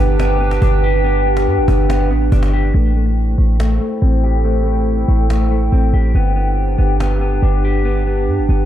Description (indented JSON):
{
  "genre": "hip hop, atmospheric cloud-rap",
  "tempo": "141 BPM",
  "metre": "4/4",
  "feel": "half-time",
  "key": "A minor",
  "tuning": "A4 = 441 Hz",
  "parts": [
    { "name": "warbly tape-like pad", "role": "sustained chords", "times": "0.0-8.7 s", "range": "D4 to G5", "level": "-20 LUFS", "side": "right 1 dB", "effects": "chorus, built-in reverb, low-pass filter" },
    { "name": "mellow electric guitar", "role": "arpeggios", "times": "0.0-8.7 s", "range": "A3 to G4", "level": "-23 LUFS", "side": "left 4 dB", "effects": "low-pass filter, digital delay" },
    { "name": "warm 808-style bass", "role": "bass", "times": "0.0-8.7 s", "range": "G1 to G2", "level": "-14 LUFS", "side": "equal", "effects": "none" },
    { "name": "cajon", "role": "drums", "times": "0.2-7.1 s", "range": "none", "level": "-27 LUFS", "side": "equal", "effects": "none" }
  ],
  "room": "digital ambience",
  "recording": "dark, warm production",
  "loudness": "-13 LUFS",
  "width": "side -11 dB against mid",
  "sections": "0.0-2.7 A section; 2.7-8.7 B section",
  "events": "filter sweep 2.7-8.7",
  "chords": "0.0 G; 2.7 Am7; 6.1 G"
}